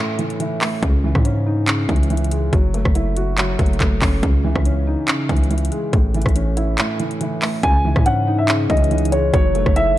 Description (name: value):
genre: hip hop, trap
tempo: 141 BPM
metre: 4/4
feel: half-time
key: C# minor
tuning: A4 = 440 Hz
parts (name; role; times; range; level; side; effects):
- felt-muted upright piano; accompaniment; 0.0-10.0 s; A2 to F#4; -22 LUFS; equal; low-pass filter
- trap drum kit; drums; 0.2-9.9 s; handclaps, hi-hat, kick drum, rim click; -19 LUFS; equal; vintage 12-bit sampler grit
- distorted 808-style bass; bass; 0.8-10.0 s; F#1 to G#2; -20 LUFS; equal; distortion
- dark concert grand piano; melody; 7.6-10.0 s; C#5 to G#5; -19 LUFS; equal; low-pass filter
- deep dark ambient pad; sustained chords; 8.4-10.0 s; E3 to C#5; -28 LUFS; equal; chorus, built-in reverb
room: little or no reverb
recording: dark, warm production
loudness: -16 LUFS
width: side -14 dB against mid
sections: 0.0-7.6 A section; 7.6-10.0 B section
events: break 0.0-0.8, 6.8-7.6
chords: 0.0 A; 0.8 C#madd9; 2.5 F#m7; 4.2 C#madd9; 5.9 A; 7.6 C#madd9; 9.3 F#m7